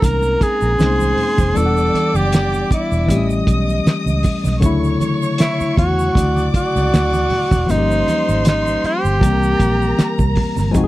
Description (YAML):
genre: lush 1970s-style soul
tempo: 78 BPM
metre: 4/4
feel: swing 54% on 16ths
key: unclear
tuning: A4 = 440 Hz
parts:
  - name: breathy tenor saxophone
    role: melody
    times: 0.0-10.4 s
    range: Eb4 to Bb4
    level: -18 LUFS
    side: right 1 dB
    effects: none
  - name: warm studio violin section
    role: second line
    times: 0.0-10.9 s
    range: Ab3 to Eb6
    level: -26 LUFS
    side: right 1 dB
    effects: none
  - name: barky tine electric piano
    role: accompaniment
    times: 0.0-10.9 s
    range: C#3 to F#5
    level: -21 LUFS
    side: left 3 dB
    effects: none
  - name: vintage muted fingered electric bass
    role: bass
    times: 0.0-10.9 s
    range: E1 to E2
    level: -19 LUFS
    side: equal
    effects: none
  - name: cloth-damped thuddy drum kit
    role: drums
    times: 0.0-10.9 s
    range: hi-hat, kick drum, snare drum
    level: -18 LUFS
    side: equal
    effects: none
  - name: congas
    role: percussion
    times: 0.0-10.9 s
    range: none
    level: -26 LUFS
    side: right 4 dB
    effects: none
  - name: tube shaker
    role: percussion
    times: 0.0-10.9 s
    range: none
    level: -39 LUFS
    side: right 16 dB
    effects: none
room: little or no reverb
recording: dry, close 1970s-style studio recording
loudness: -14 LUFS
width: side -16 dB against mid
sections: 0.0-10.9 A section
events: none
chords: 0.0 Bbm11; 1.6 Em9; 3.1 A7; 4.6 Dmaj9; 7.7 Gm7b5; 9.2 C7